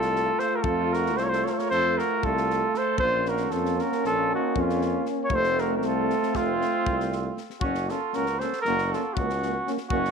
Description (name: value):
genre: balkan folk, Balkan brass band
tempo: 233 BPM (eighths)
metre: 9/8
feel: straight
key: unclear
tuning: A4 = 440 Hz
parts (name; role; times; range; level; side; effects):
- mellow cornet; melody; 0.0-10.1 s; F4 to Db5; -26 LUFS; left 1 dB; none
- warm trumpet; second line; 0.0-10.1 s; C4 to Bb4; -32 LUFS; right 12 dB; none
- mellow euphonium; accompaniment; 0.0-10.0 s; A3 to Bb3; -31 LUFS; right 14 dB; none
- warm trombone; accompaniment; 0.0-10.0 s; C4 to F4; -32 LUFS; left 15 dB; none
- warm tuba; bass; 0.0-10.1 s; F1 to F2; -30 LUFS; left 1 dB; none
- tight funk drum kit; percussion; 0.0-10.1 s; kick drum, snare drum; -35 LUFS; left 3 dB; none
room: light reverb, studio reverb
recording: 1960s-style stereo with parts hard left and right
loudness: -23 LUFS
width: side -6 dB against mid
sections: 0.0-7.6 A section; 7.6-10.1 B section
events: none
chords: 0.0 F; 3.0 Bbm; 5.3 F; 7.6 Gb